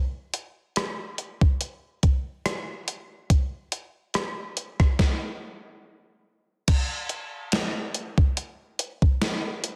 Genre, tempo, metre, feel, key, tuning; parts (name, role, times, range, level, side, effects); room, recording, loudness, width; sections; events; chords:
R&B; 71 BPM; 4/4; swing 54% on 16ths
gated 80s digital drum machine; drums; 0.3-9.8 s; crash cymbal, hi-hat, kick drum, rim click, snare drum; -25 LUFS; equal; gated reverb, gated reverb snare
light reverb; dense, heavily limited modern master; -27 LUFS; mono
0.0-6.7 A section; 6.7-9.8 B section
stop 5.0-6.7